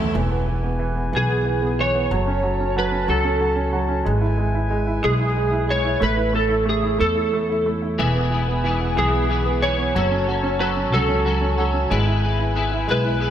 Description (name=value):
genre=pop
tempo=61 BPM (dotted quarters)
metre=6/8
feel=straight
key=E major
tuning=A4 = 439 Hz
part: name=bright upright piano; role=accompaniment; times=0.0-13.3 s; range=E3 to C#5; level=-24 LUFS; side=right 4 dB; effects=none
part: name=twelve-string electric guitar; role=arpeggios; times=0.0-0.1, 8.0-13.3 s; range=E2 to B4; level=-27 LUFS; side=left 5 dB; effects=ensemble chorus, ping-pong delay
part: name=upright bass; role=bass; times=0.0-13.3 s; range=E1 to E2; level=-23 LUFS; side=equal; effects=none
part: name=warm brass ensemble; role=sustained chords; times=0.2-13.3 s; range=A3 to A5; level=-29 LUFS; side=left 2 dB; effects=none
part: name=electric slide guitar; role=melody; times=1.2-13.3 s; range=G#4 to C#5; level=-23 LUFS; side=equal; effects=ensemble chorus, ping-pong delay
room=light reverb, small room ambience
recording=bright 1980s-style digital production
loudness=-18 LUFS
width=side -10 dB against mid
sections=0.1-13.3 A section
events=none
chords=0.1 E; 2.1 F#m; 4.0 E/G#; 6.0 A; 8.0 E; 9.9 F#m; 11.9 E/G#